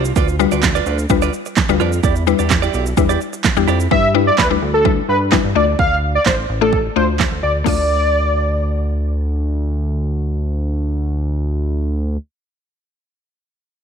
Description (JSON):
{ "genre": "dance-pop", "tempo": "128 BPM", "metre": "4/4", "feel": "straight", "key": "D dorian", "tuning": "A4 = 440 Hz", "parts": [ { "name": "mallet-like synth pluck", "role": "accompaniment", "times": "0.0-12.2 s", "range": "G3 to D5", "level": "-19 LUFS", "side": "left 12 dB", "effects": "chorus, sidechain pumping" }, { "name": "direct-recorded clean electric guitar", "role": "riff", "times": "0.0-3.9 s", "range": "E4 to D5", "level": "-22 LUFS", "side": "right 15 dB", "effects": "lush chorus" }, { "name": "chorused synth bass", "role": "bass", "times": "0.0-12.2 s", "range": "A1 to G2", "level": "-19 LUFS", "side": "equal", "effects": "sidechain pumping" }, { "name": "pop drum kit", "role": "drums", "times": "0.0-7.8 s", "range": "crash cymbal, handclaps, kick drum, shaker, snare drum", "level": "-18 LUFS", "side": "right 4 dB", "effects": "overdrive" }, { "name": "wide unison lead", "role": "melody", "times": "3.9-9.0 s", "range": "A4 to F5", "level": "-17 LUFS", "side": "equal", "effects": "slapback echo" } ], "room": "light reverb, digital ambience", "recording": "1960s-style stereo with parts hard left and right", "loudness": "-14 LUFS", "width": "side -7 dB against mid", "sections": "0.0-3.9 A section; 3.9-7.7 B section; 7.7-11.4 C section", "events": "none", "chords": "0.2 G7/D; 2.0 Em7; 3.9 G6; 5.6 Dm" }